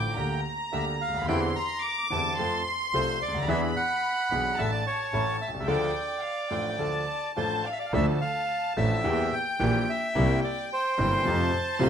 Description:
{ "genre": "tango", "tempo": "108 BPM", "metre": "4/4", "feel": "rubato", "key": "D minor", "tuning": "A4 = 440 Hz", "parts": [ { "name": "bandoneon", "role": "melody", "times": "0.0-11.9 s", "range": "C5 to Bb5", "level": "-30 LUFS", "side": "right 1 dB", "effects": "none" }, { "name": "warm studio violin section", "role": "second line", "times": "0.0-11.9 s", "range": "F5 to D6", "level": "-32 LUFS", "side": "left 1 dB", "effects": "none" }, { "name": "clear concert grand piano", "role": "accompaniment", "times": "0.0-11.9 s", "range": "G1 to A4", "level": "-29 LUFS", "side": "left 1 dB", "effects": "none" }, { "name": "bandoneon", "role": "stabs", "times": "0.0-7.6 s", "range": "F3 to G4", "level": "-39 LUFS", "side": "right 7 dB", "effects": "none" }, { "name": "clear double bass", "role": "bass", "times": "0.0-11.9 s", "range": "G1 to F2", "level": "-31 LUFS", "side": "right 2 dB", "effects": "none" } ], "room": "moderate large studio reverb, RT60 0.9 s", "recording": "minimal, uncompressed stereo recording", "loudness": "-25 LUFS", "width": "side -8 dB against mid", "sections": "0.0-7.9 A section; 7.9-11.9 A section", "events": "break 5.7-7.9", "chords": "0.2 Gm/D; 1.3 Cadd9/E; 2.4 F; 3.5 E7; 4.6 Asus4; 5.1 A; 5.7 Dm; 9.0 Edim; 10.2 C7; 11.3 F", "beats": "0.16 0.72 | 1.28 1.83 2.38 2.93 | 3.48 4.03 4.58 5.13 | 5.67 6.23 6.79 7.36 | 7.93 8.49 9.05 9.61 | 10.16 10.71 11.27 11.81" }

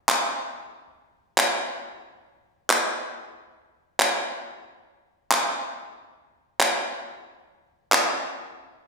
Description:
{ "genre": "pop", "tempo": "92 BPM", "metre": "4/4", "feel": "straight", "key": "none", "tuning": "none", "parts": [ { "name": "group handclap", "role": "percussion", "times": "0.1-8.1 s", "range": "none", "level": "-22 LUFS", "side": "equal", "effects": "none" } ], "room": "wet recital hall reverb, RT60 1.4 s", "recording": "recorded in a church or concert hall", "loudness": "-22 LUFS", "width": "side -4 dB against mid", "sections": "0.0-8.9 A section", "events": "none", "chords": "none", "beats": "0.08 0.73 1.38 | 2.04 2.69 3.34 3.99 | 4.65 5.30 5.95 6.61 | 7.26 7.91" }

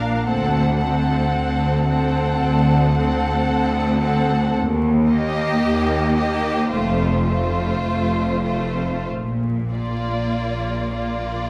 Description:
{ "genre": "classical, slow romantic movement for symphony orchestra", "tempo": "47-56 BPM", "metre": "4/4", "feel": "rubato", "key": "unclear", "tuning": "A4 = 439 Hz", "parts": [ { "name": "rich chamber violin section", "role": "melody", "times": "0.0-11.5 s", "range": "C5 to F#5", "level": "-30 LUFS", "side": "equal", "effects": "none" }, { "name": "rich chamber violin section", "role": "second line", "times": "0.0-11.5 s", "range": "F4 to Bb4", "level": "-29 LUFS", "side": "equal", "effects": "none" }, { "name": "rich chamber viola section", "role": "accompaniment", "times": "0.0-11.5 s", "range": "A3 to D4", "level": "-28 LUFS", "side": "equal", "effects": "none" }, { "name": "rich chamber double bass section", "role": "bass", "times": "0.0-11.4 s", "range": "F1 to Eb2", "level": "-26 LUFS", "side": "equal", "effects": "none" }, { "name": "rich studio cello section", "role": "bass", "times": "0.0-11.4 s", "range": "D2 to Bb2", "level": "-26 LUFS", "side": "equal", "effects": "none" } ], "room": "wet recital hall reverb, RT60 1.6 s", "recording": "vinyl crackle", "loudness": "-20 LUFS", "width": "mono", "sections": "0.0-11.5 A section", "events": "none", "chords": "0.3 D7; 4.6 Eb; 6.7 F; 9.1 Bb", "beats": "| 0.27 1.34 2.41 3.48 | 4.55 5.63 6.72 7.86 | 9.08 10.35" }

